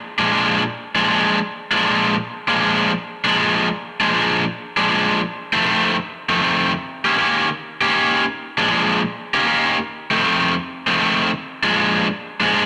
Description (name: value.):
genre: blues.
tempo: 157 BPM.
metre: 4/4.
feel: swing 66% on 8ths.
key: Bb mixolydian.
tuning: A4 = 441 Hz.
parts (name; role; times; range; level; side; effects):
cranked stack guitar; solo; 0.2-12.7 s; F2 to G4; -18 LUFS; equal; overdrive, spring reverb.
room: moderate studio reverb, RT60 0.7 s.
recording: none.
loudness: -19 LUFS.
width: mono.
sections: 0.0-11.4 A section; 11.4-12.7 B section.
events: none.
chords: 0.0 Bb7; 5.3 F7; 6.8 Eb7; 8.3 Bb7; 9.1 Eb7; 9.9 F7; 11.4 Bb7.